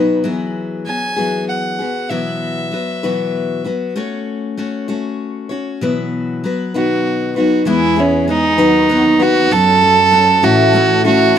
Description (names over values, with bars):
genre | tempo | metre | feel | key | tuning
acoustic folk duo or small band | 65 BPM (dotted quarters) | 6/8 | straight | E major | A4 = 441 Hz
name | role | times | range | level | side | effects
picked steel-string acoustic guitar | accompaniment | 0.0-11.4 s | A2 to C#5 | -17 LUFS | left 3 dB | none
muted studio string section | sustained chords | 0.0-0.2, 7.7-11.4 s | D#2 to B4 | -20 LUFS | right 2 dB | none
warm fiddle | melody | 0.9-3.6, 6.8-11.4 s | C#4 to G#5 | -14 LUFS | right 3 dB | none
room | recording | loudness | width
light reverb | dry, close 1970s-style studio recording | -13 LUFS | side -9 dB against mid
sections
0.2-7.7 A section; 7.7-11.4 B section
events
none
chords
0.2 Eadd9; 2.1 Bsus4; 4.0 F#m/A; 5.8 Bsus4; 6.7 B; 7.7 E; 8.6 B/D#; 9.5 F#m; 10.4 A